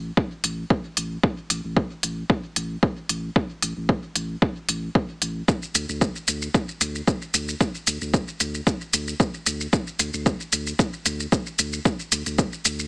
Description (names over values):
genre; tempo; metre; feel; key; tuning
dub techno; 113 BPM; 4/4; swing 54% on 16ths; unclear; A4 = 443 Hz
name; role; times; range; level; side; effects
warm sub bass; bass; 0.0-12.9 s; A1 to D2; -30 LUFS; equal; sidechain pumping
electronic kick drum; drums; 0.2-12.5 s; none; -22 LUFS; equal; small room ambience
electronic hi-hat and shaker; drums; 0.4-12.9 s; none; -25 LUFS; equal; small room ambience
room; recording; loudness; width
little or no reverb; small speaker sound; -22 LUFS; side -30 dB against mid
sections
0.0-12.9 A section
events
none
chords
none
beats
0.17 0.70 | 1.24 1.77 2.30 2.83 | 3.36 3.89 4.42 4.95 | 5.48 6.01 6.54 7.08 | 7.61 8.14 8.67 9.20 | 9.73 10.26 10.79 11.32 | 11.85 12.38